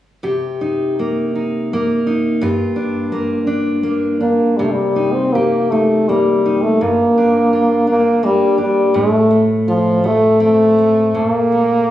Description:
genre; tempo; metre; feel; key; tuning
celtic folk, Celtic slow air; 82 BPM; 3/4; rubato; C dorian; A4 = 440 Hz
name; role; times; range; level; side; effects
fingerpicked steel-string acoustic guitar; accompaniment; 0.2-11.9 s; G2 to G4; -18 LUFS; equal; none
clear French horn; melody; 4.2-11.9 s; F3 to C4; -13 LUFS; equal; none
room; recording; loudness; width
moderate scoring stage reverb, RT60 1.5 s; recorded on a phone in the room, club reverb, faint mains hum; -13 LUFS; side -13 dB against mid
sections
0.2-4.6 A section; 4.6-11.9 B section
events
none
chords
0.2 Cm7; 2.4 Gm7; 4.6 Cm7; 6.8 Gm7; 9.0 F/A; 11.2 Bbmaj7(no3)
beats
| 0.23 0.98 1.71 | 2.42 3.12 3.84 | 4.58 5.33 6.09 | 6.81 7.53 8.24 | 8.96 9.69 10.42 | 11.15 11.89

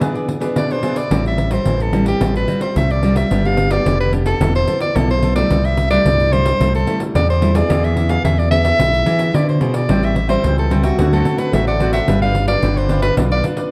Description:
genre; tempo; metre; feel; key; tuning
samba and choro; 109 BPM; 4/4; straight; A minor; A4 = 445 Hz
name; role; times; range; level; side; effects
cavaquinho; accompaniment; 0.0-1.1, 9.9-13.7 s; D4 to G5; -30 LUFS; equal; none
nylon-string guitar; accompaniment; 0.0-13.7 s; G2 to B4; -23 LUFS; equal; none
pandeiro; percussion; 0.0-13.7 s; none; -23 LUFS; equal; none
breathy soprano saxophone; melody; 0.6-13.4 s; F#4 to F5; -22 LUFS; equal; none
modern bright picked electric bass; bass; 1.1-13.4 s; E1 to E3; -20 LUFS; equal; none
room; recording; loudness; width
wet large studio reverb, RT60 1.3 s; dark, warm production; -16 LUFS; mono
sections
0.0-1.1 A section; 1.1-13.7 B section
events
none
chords
0.0 E7; 1.1 Am7; 2.2 Fadd9/A; 3.3 G; 4.4 Esus4; 5.5 C6; 6.6 Am7/C; 7.7 E; 9.9 Am7; 11.0 D7; 12.1 G7; 13.2 Bdim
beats
0.01 0.56 | 1.11 1.66 2.21 2.76 | 3.31 3.86 4.41 4.96 | 5.50 6.05 6.60 7.15 | 7.70 8.25 8.79 9.34 | 9.89 10.44 10.98 11.53 | 12.08 12.63 13.18

